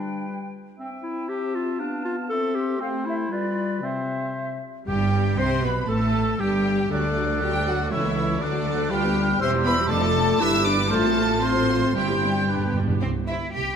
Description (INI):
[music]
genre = quick classical-period movement for symphony orchestra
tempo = 118 BPM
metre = 2/4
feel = rubato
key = C major, G major from 4.9 s, C major from 8.9 s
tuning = A4 = 443 Hz
[part]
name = small flute group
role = second line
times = 0.0-12.5 s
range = D5 to G6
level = -31 LUFS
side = right 1 dB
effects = none
[part]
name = warm clarinet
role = second line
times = 0.0-12.8 s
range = C4 to C5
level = -30 LUFS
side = left 1 dB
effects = none
[part]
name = warm oboe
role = second line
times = 0.0-12.8 s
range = G4 to F5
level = -32 LUFS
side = right 1 dB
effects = none
[part]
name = dark French horn section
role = sustained chords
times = 0.0-12.8 s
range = C3 to E4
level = -27 LUFS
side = left 3 dB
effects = none
[part]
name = rich chamber violin section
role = melody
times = 4.9-13.5 s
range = D5 to E6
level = -29 LUFS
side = left 1 dB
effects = none
[part]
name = clear chamber violin section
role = second line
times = 4.9-13.8 s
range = D4 to G5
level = -32 LUFS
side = left 2 dB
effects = none
[part]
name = rich studio viola section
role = accompaniment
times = 4.9-13.5 s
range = E3 to C5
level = -30 LUFS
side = right 2 dB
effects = none
[part]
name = clear chamber cello section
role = bass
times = 4.9-13.8 s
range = C#2 to G4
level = -29 LUFS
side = right 2 dB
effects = none
[part]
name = dark chamber double bass section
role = bass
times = 4.9-13.8 s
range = E1 to D2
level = -28 LUFS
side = right 4 dB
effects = none
[part]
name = timpani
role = percussion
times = 4.9-5.6, 12.5-13.0 s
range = G2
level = -30 LUFS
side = right 1 dB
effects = none
[sound]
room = moderate scoring stage reverb, RT60 1.9 s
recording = none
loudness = -21 LUFS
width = side -7 dB against mid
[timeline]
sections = 0.0-4.9 A section; 4.9-13.0 B section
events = timpani fill 12.5-13.0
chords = 0.0 G; 0.8 C; 1.8 Bm7b5; 2.3 C; 2.8 F/A (rootless); 3.3 G7; 3.8 C; 4.9 G; 5.9 N.C.; 6.9 D; 7.9 A/C#; 8.4 D; 8.9 G7/D; 9.4 C/E; 9.9 Dm/F; 10.4 G; 10.9 F/A; 12.0 C/G; 12.5 G; 13.0 C